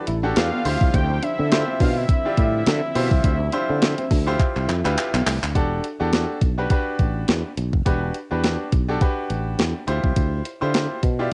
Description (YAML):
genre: early-eighties boogie funk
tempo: 104 BPM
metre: 4/4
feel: swing 56% on 16ths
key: E phrygian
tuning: A4 = 440 Hz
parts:
  - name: bright grand piano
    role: accompaniment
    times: 0.0-11.3 s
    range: D4 to D5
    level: -28 LUFS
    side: equal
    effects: cassette tape, plate reverb
  - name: chorused pulse-width pad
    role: sustained chords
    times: 0.0-5.5 s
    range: D3 to E5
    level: -37 LUFS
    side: equal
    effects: none
  - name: electric guitar at the edge of break-up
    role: riff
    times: 0.1-5.4 s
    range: A3 to E4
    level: -32 LUFS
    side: equal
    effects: subtle chorus, cassette tape
  - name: sustaining fretless electric bass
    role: bass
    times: 0.1-11.3 s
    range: E1 to D3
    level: -26 LUFS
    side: equal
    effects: none
  - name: clean 12-bit digital drum machine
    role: drums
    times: 0.1-11.2 s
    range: handclaps, hi-hat, kick drum, snare drum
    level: -24 LUFS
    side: equal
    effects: cassette tape
  - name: fat analog lead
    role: melody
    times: 0.4-5.0 s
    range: E5 to G5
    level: -30 LUFS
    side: equal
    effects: cassette tape, plate reverb
room: little or no reverb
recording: home recording on cassette, nothing above 10.8 kHz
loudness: -21 LUFS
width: mono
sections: 0.0-5.6 A section; 5.6-11.3 B section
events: drum fill 4.4-5.6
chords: 0.0 Em11; 0.6 Dm11; 5.6 Em11; 9.9 Dm11